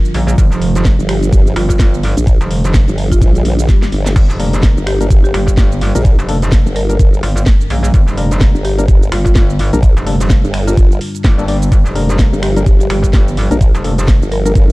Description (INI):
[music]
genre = bass house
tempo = 127 BPM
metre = 4/4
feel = swing 58% on 16ths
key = G minor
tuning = A4 = 440 Hz
[part]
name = dark analog pad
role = sustained chords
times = 0.0-14.7 s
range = G3 to Bb4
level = -21 LUFS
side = right 2 dB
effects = chorus, sidechain pumping
[part]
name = metallic wobble bass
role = bass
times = 0.1-14.2 s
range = F1 to Bb1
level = -15 LUFS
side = equal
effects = chorus, tube saturation, sidechain pumping
[part]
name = garage drum kit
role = drums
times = 0.1-14.7 s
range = crash cymbal, finger snaps, hi-hat, shaker, snare drum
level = -23 LUFS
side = equal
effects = none
[part]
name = electronic kick drum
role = drums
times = 0.4-14.7 s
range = none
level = -10 LUFS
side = equal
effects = none
[part]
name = formant-sweep wobble bass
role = bass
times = 1.0-14.7 s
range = G1 to Bb1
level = -15 LUFS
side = equal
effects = chorus, overdrive, sidechain pumping
[part]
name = buzzing marimba with medium mallets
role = melody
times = 1.1-14.5 s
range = F4 to Bb4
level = -22 LUFS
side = left 2 dB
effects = tape echo
[part]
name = swell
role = sound effects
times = 3.4-4.2 s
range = none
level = -27 LUFS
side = left 10 dB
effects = none
[part]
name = percussive organ stab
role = stabs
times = 4.4-14.5 s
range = G3 to D5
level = -22 LUFS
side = left 3 dB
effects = chorus, sidechain pumping, tape echo
[sound]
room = digital ambience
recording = dark, warm production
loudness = -10 LUFS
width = side -21 dB against mid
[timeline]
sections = 0.0-14.7 A section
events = swell 3.4-4.2; drum fill 3.7-4.2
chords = 0.0 Gm